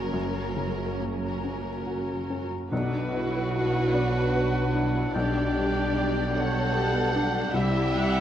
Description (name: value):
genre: cinematic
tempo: 46-51 BPM (dotted quarters)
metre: 6/8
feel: rubato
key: B minor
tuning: A4 = 440 Hz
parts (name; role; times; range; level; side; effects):
- rich studio violin section; melody; 0.0-8.2 s; Bb4 to F#5; -34 LUFS; left 3 dB; none
- felt-muted upright piano; accompaniment; 0.0-8.2 s; B1 to D5; -30 LUFS; left 2 dB; none
- warm studio viola section; accompaniment; 0.0-8.2 s; B3 to F#5; -34 LUFS; right 2 dB; none
- rich studio cello section; bass; 0.0-8.2 s; Gb2 to C3; -33 LUFS; right 3 dB; none
- rich studio double bass section; bass; 0.0-8.2 s; Gb1 to C2; -33 LUFS; right 3 dB; none
- clear oboe; second line; 2.7-8.2 s; E5 to G5; -34 LUFS; right 2 dB; none
- mellow clarinet; second line; 2.7-8.2 s; D4 to E4; -35 LUFS; right 1 dB; none
- warm studio violin section; second line; 2.7-8.2 s; F#4 to A4; -32 LUFS; left 1 dB; none
- dark French horn section; sustained chords; 2.7-8.2 s; F#3 to E4; -32 LUFS; left 4 dB; none
- timpani; percussion; 2.7-3.9 s; B2; -37 LUFS; left 1 dB; none
room: moderate scoring stage reverb, RT60 1.9 s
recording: worn, warbling old tape, cassette tape, warbly pitch drift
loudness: -24 LUFS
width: side -10 dB against mid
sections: 0.0-2.7 A section; 2.7-8.2 B section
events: none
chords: 0.0 Gb; 2.7 Bm; 5.1 G/B; 7.5 C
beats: | 0.14 1.44 | 2.71 3.94 | 5.14 6.35 | 7.54